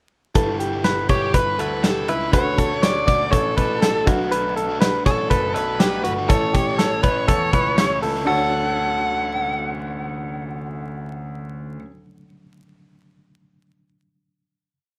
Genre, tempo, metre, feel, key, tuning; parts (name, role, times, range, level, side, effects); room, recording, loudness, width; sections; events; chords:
jangly indie pop; 121 BPM; 4/4; straight; D major; A4 = 440 Hz
reed electric piano; accompaniment; 0.3-14.7 s; D4 to C#5; -34 LUFS; equal; tremolo
crunchy overdriven guitar; accompaniment; 0.4-12.0 s; A2 to B4; -33 LUFS; equal
direct-recorded clean electric guitar; arpeggios; 0.4-9.7 s; E4 to D5; -25 LUFS; equal
clear grand piano; bass; 0.4-11.8 s; F#1 to E2; -32 LUFS; equal
big rock drum kit; drums; 0.4-8.1 s; hi-hat, kick drum, snare drum; -23 LUFS; equal
bluesy overdriven lead guitar; melody; 1.1-11.8 s; G4 to F#5; -27 LUFS; equal; distortion
light reverb, small room ambience; rough home demo mix, vinyl crackle; -20 LUFS; mono
0.4-8.3 bridge; 8.3-12.2 final chord
0.4 G6; 2.3 Dmaj7; 4.1 Bm7; 6.3 A; 8.3 Dmaj7